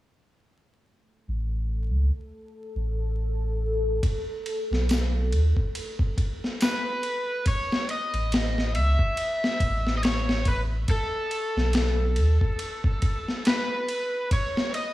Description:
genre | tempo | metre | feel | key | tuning
trip hop | 70 BPM | 4/4 | swing 57% on 16ths | unclear | A4 = 439 Hz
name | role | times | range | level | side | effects
deep dark ambient pad | sustained chords | 2.6-7.5 s | A4 | -34 LUFS | left 1 dB | chorus, built-in reverb
warm sub bass | bass | 1.3-12.4 s | A1 to D#2 | -24 LUFS | equal | none
boom bap sampler-style drum kit | drums | 4.0-14.9 s | kick drum, ride cymbal, snare drum | -26 LUFS | equal | none
tambourine | percussion | 4.9-6.8 s | none | -41 LUFS | left 4 dB | none
overdriven slide guitar | melody | 6.6-14.9 s | A4 to E5 | -28 LUFS | equal | tape echo
room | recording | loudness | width
digital ambience | vinyl crackle, small room reverb | -23 LUFS | side -16 dB against mid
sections
0.6-7.5 A section; 7.5-14.9 B section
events
none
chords
0.6 N.C.; 4.0 B7(no3); 7.5 A; 10.9 B7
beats
| 0.60 1.46 2.32 3.18 | 4.03 4.89 5.75 6.61 | 7.46 8.32 9.18 10.03 | 10.89 11.75 12.61 13.46 | 14.32

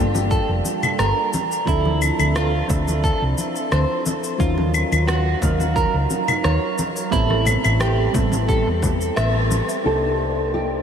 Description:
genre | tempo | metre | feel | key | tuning
sunset chillout | 88 BPM | 4/4 | straight | unclear | A4 = 441 Hz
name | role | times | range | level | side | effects
soft electric-piano-like synth keys | accompaniment | 0.0-10.8 s | F3 to F5 | -24 LUFS | moving between left 4 dB and right 6 dB | chorus, phaser, auto-pan, tape echo
hollow-body short-scale fingered electric bass | bass | 0.0-10.8 s | F1 to E2 | -21 LUFS | equal | none
congas | percussion | 0.1-9.7 s | none | -30 LUFS | left 2 dB | none
electronic shaker, claves and rim click | drums | 0.2-10.7 s | none | -26 LUFS | left 2 dB | low-pass filter on perc, low-pass filter on snare, low-pass filter on room
electric guitar at the edge of break-up | arpeggios | 0.3-9.4 s | E4 to E5 | -25 LUFS | right 2 dB | wide subtle chorus, tape echo
electronic kick drum | drums | 0.3-9.0 s | none | -23 LUFS | equal | none
nylon-string guitar | melody | 9.9-10.8 s | G4 to A4 | -22 LUFS | left 1 dB | ensemble chorus, analog delay
room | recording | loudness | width
moderate huge ambient reverb, RT60 8.7 s | dreamy mix soaked in reverb | -17 LUFS | side -8 dB against mid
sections
0.0-9.9 A section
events
band accent 9.2-9.5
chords
0.0 Gm9; 1.3 Dm9; 4.4 Ebm9; 7.1 Am9; 9.9 Cm9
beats
0.31 0.99 | 1.67 2.35 3.04 3.72 | 4.40 5.08 5.76 6.45 | 7.13 7.81 8.49 9.17 | 9.85 10.54

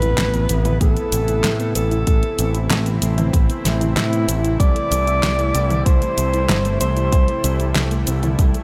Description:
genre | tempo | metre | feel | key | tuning
synthwave | 95 BPM | 4/4 | straight | A minor | A4 = 440 Hz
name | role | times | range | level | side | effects
mellow alto saxophone | melody | 0.0-8.0 s | E4 to D5 | -25 LUFS | equal | delay
lush unison pad | sustained chords | 0.1-8.6 s | C3 to E4 | -28 LUFS | equal | chorus
soft round pluck | arpeggios | 0.0-8.6 s | G3 to E4 | -32 LUFS | equal | none
modern bright picked electric bass | bass | 0.0-8.5 s | G1 to A2 | -23 LUFS | equal | tube saturation
pop drum kit | drums | 0.0-8.6 s | handclaps, hi-hat, shaker, snare drum, toms | -25 LUFS | equal | studio reverb
impact | sound effects | 0.0-2.1 s | none | -30 LUFS | equal | none
electronic kick drum | drums | 0.8-8.5 s | none | -18 LUFS | equal | studio reverb
room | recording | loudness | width
light reverb | none | -18 LUFS | mono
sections
0.0-8.6 A section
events
impact 0.0-2.1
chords
0.0 Amadd9; 4.6 C6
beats
0.18 0.81 1.44 | 2.07 2.70 3.34 3.97 | 4.60 5.23 5.86 6.49 | 7.12 7.76 8.39

